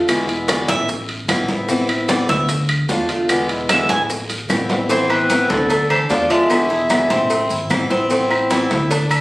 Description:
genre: latin, Cuban son and guajira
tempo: 150 BPM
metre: 4/4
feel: straight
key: A harmonic minor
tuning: A4 = 439 Hz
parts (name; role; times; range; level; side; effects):
- picked acoustic archtop guitar; accompaniment; 0.0-8.9 s; B2 to F4; -19 LUFS; left 1 dB; none
- upright bass; bass; 0.0-9.2 s; G#1 to E2; -26 LUFS; equal; none
- bongos and cowbell; percussion; 0.1-9.1 s; none; -28 LUFS; left 1 dB; none
- claves; percussion; 0.1-9.2 s; none; -24 LUFS; equal; none
- congas; percussion; 0.1-9.2 s; none; -25 LUFS; equal; none
- guiro; percussion; 0.1-9.2 s; none; -32 LUFS; left 1 dB; none
- maracas; percussion; 0.1-9.2 s; none; -33 LUFS; right 2 dB; none
- timbales and agogo bells; percussion; 0.1-9.2 s; none; -26 LUFS; right 2 dB; none
- Cuban tres; arpeggios; 0.5-9.2 s; C4 to G#5; -21 LUFS; right 1 dB; none
- clear clarinet; melody; 4.9-7.9 s; A4 to E5; -19 LUFS; equal; plate reverb
- koto; second line; 4.9-9.2 s; D3 to G#3; -25 LUFS; left 1 dB; none
room: moderate studio reverb, RT60 0.6 s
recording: recorded on a phone in the room, club reverb, compression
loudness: -15 LUFS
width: side -19 dB against mid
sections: 0.0-4.9 A section; 4.9-9.2 B section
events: Cuban tres solo 0.0-4.9; drum fill 4.5-4.9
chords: 0.1 E7; 0.9 Amadd9; 2.5 Dm; 3.3 E7; 4.1 Amadd9; 5.7 Dm; 6.5 E7; 7.3 Amadd9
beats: | 0.09 0.49 0.89 1.29 | 1.69 2.09 2.49 2.89 | 3.29 3.69 4.09 4.50 | 4.90 5.30 5.70 6.10 | 6.50 6.90 7.30 7.71 | 8.11 8.51 8.91

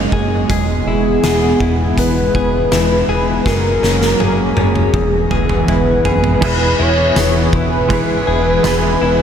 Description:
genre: dream pop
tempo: 81 BPM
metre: 4/4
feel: straight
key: E lydian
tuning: A4 = 440 Hz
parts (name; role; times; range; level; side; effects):
- phased analog pad; sustained chords; 0.0-9.2 s; E3 to G#5; -19 LUFS; right 1 dB; phaser, chorus
- direct-recorded clean electric guitar; arpeggios; 0.0-9.2 s; E2 to G#4; -21 LUFS; left 4 dB; wide subtle chorus, tape echo
- fat analog bass; bass; 0.0-9.2 s; E1 to F#1; -19 LUFS; equal; none
- oversized low-tuned drum kit; drums; 0.1-8.8 s; crash cymbal, hi-hat, kick drum, ride cymbal, snare drum, tambourine, toms; -19 LUFS; equal; none
- warm velvety synth lead; melody; 0.5-9.2 s; G#4 to C#5; -18 LUFS; left 1 dB; chorus, tape echo
- semi-hollow electric guitar; accompaniment; 6.4-9.2 s; E3 to G#4; -22 LUFS; right 5 dB; tremolo, ensemble chorus
room: light reverb, studio reverb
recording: none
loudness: -12 LUFS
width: side -8 dB against mid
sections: 0.0-6.4 A section; 6.4-9.2 B section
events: drum fill 3.5-6.4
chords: 0.5 E; 3.5 F#add9; 4.9 E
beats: | 0.49 1.24 1.98 2.72 | 3.46 4.20 4.94 5.68 | 6.42 7.16 7.90 8.64

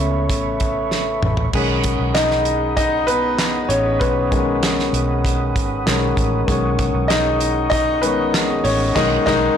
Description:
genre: piano-driven pop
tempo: 97 BPM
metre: 4/4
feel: straight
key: unclear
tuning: A4 = 440 Hz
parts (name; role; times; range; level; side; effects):
- clear upright piano; accompaniment; 0.0-9.6 s; C#3 to D#5; -19 LUFS; left 2 dB; none
- percussive tonewheel organ; sustained chords; 0.0-9.6 s; G#4 to D#6; -26 LUFS; right 3 dB; chorus vibrato, wide subtle chorus
- vintage muted fingered electric bass; bass; 0.0-9.5 s; G#1 to C#2; -24 LUFS; right 1 dB; tube saturation
- loose indie drum kit; drums; 0.3-9.4 s; crash cymbal, handclaps, hi-hat, kick drum, snare drum, toms; -22 LUFS; right 1 dB; none
room: moderate large studio reverb, RT60 0.9 s, small room ambience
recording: blown-out, overdriven recording, overdrive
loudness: -16 LUFS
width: side -8 dB against mid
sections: 0.0-1.5 A section; 1.5-9.6 B section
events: upright piano solo 0.0-1.5, 1.5-9.6; drum fill 0.9-1.5; band accent 9.0-9.6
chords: 0.0 Aadd9; 1.5 B6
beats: 0.30 0.92 | 1.53 2.15 2.77 3.39 | 4.01 4.63 5.25 5.86 | 6.48 7.10 7.72 8.34 | 8.96

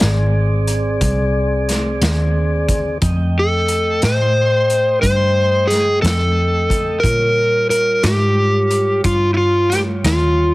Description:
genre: slow blues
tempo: 60 BPM (dotted quarters)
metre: 12/8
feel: straight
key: unclear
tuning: A4 = 440 Hz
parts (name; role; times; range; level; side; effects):
- mellow tonewheel organ; sustained chords; 0.0-10.5 s; G3 to G5; -24 LUFS; equal; slow rotary speaker
- vintage muted fingered electric bass; bass; 0.0-10.5 s; Ab1 to Bb2; -18 LUFS; equal; none
- vintage drum kit; drums; 0.0-10.2 s; hi-hat, kick drum, snare drum; -22 LUFS; equal; none
- overdriven slide guitar; melody; 3.4-10.5 s; E4 to C5; -15 LUFS; equal; none
room: light reverb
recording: heavily compressed radio sound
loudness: -14 LUFS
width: side -20 dB against mid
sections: 0.0-10.5 A section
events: none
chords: 0.0 Bb9 (rootless); 3.0 F9; 7.0 Eb9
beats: 0.01 1.01 2.02 | 3.02 4.03 5.03 6.03 | 7.04 8.04 9.05 10.05

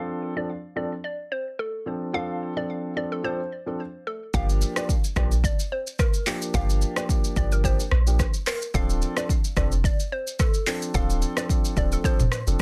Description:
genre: afrobeats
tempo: 109 BPM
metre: 4/4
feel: swing 55% on 16ths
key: G minor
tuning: A4 = 442 Hz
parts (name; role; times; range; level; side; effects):
- hollow square pluck; melody; 0.0-12.4 s; A4 to F5; -35 LUFS; equal; chorus, low-pass filter, delay
- dark baby grand piano; accompaniment; 0.0-12.6 s; F3 to A4; -33 LUFS; equal; low-pass filter
- punchy sub bass; bass; 4.3-12.6 s; D1 to Bb1; -25 LUFS; equal; none
- afro-pop drum kit; drums; 4.3-12.6 s; handclaps, hi-hat, kick drum, rim click, shaker, toms; -27 LUFS; equal; overdrive
room: little or no reverb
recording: dense, heavily limited modern master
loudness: -25 LUFS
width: mono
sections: 0.0-4.3 A section; 4.3-12.6 B section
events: none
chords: 0.0 Dm7; 4.3 Gm7; 8.7 Dm7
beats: 0.49 1.04 1.59 | 2.14 2.69 3.24 3.79 | 4.34 4.89 5.44 5.99 | 6.54 7.09 7.64 8.19 | 8.74 9.29 9.84 10.39 | 10.95 11.49 12.05 12.60

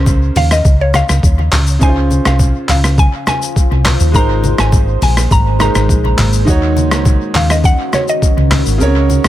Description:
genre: afrobeats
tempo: 103 BPM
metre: 4/4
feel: straight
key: unclear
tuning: A4 = 440 Hz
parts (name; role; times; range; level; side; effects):
- clear grand piano; accompaniment; 0.0-9.3 s; Db3 to Db5; -20 LUFS; right 2 dB; none
- hollow-body short-scale fingered electric bass; bass; 0.0-9.3 s; Ab1 to Eb2; -13 LUFS; equal; none
- boom bap sampler-style drum kit; drums; 0.1-9.3 s; handclaps, hi-hat, kick drum, rim click, shaker; -14 LUFS; equal; overdrive, dub echo
- congas; percussion; 0.1-9.2 s; none; -22 LUFS; left 1 dB; none
- mallet-like synth pluck; melody; 0.4-8.5 s; Db5 to Bb5; -19 LUFS; left 1 dB; chorus, dub echo
- deep dark ambient pad; sustained chords; 2.6-9.3 s; Db3 to C5; -21 LUFS; equal; chorus, built-in reverb
room: little or no reverb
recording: echo-heavy mix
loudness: -10 LUFS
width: side -14 dB against mid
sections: 0.0-9.3 A section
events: kick muted 8.8-9.3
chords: 0.0 Bbmadd9/Db; 1.8 Dbmaj7; 4.1 Abadd9; 6.5 Ebm7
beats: 0.07 0.65 1.23 | 1.81 2.40 2.98 3.56 | 4.14 4.73 5.31 5.89 | 6.47 7.06 7.64 8.22 | 8.80

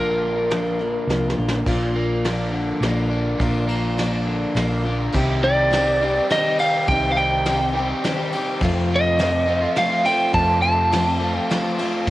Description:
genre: folk rock and heartland rock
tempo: 104 BPM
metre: 3/4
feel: straight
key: unclear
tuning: A4 = 440 Hz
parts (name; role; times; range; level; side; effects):
- lightly driven lead guitar; melody; 0.0-1.3, 5.4-11.7 s; Bb4 to A5; -20 LUFS; right 1 dB; cassette tape, tape echo
- picked steel-string acoustic guitar; accompaniment; 0.0-12.1 s; F2 to G4; -25 LUFS; left 2 dB; cassette tape
- overdriven electric guitar; riff; 0.0-12.1 s; F2 to G4; -26 LUFS; right 1 dB; cassette tape
- hollow-body short-scale fingered electric bass; bass; 0.0-12.1 s; Bb1 to F2; -25 LUFS; equal; none
- soft brush drum kit; drums; 0.5-12.1 s; crash cymbal, hi-hat, kick drum, ride cymbal, snare drum; -27 LUFS; equal; cassette tape
room: studio ambience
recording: home recording on cassette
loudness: -18 LUFS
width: side -16 dB against mid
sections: 0.0-1.7 A section; 1.7-5.1 B section; 5.1-12.1 C section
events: drum fill 1.1-1.7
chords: 0.0 Bb; 5.1 Cm; 8.6 F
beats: 0.50 1.08 | 1.66 2.25 2.83 | 3.41 3.99 4.57 | 5.14 5.72 6.30 | 6.88 7.46 8.03 | 8.61 9.19 9.77 | 10.34 10.92 11.49 | 12.07

